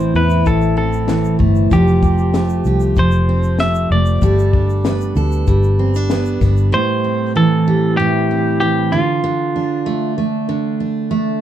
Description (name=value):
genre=acoustic pop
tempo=96 BPM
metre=4/4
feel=straight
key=A minor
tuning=A4 = 440 Hz
part: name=clean electric guitar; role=melody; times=0.0-10.1 s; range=F4 to E5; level=-20 LUFS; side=equal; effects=none
part: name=picked steel-string acoustic guitar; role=accompaniment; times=0.0-11.4 s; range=A2 to A4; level=-16 LUFS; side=right 2 dB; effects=none
part: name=vintage muted fingered electric bass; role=bass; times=0.0-6.7 s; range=F1 to E2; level=-16 LUFS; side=equal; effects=none
part: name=compact cocktail drum kit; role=drums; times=0.3-6.7 s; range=kick drum, shaker, snare drum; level=-19 LUFS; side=left 2 dB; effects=none
room=moderate studio reverb, RT60 0.5 s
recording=dark, warm production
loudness=-13 LUFS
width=side -11 dB against mid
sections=0.0-6.7 A section; 6.7-11.4 B section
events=none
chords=0.0 Am; 1.7 Fadd9; 4.2 Gadd9; 6.7 Am7; 8.9 Dm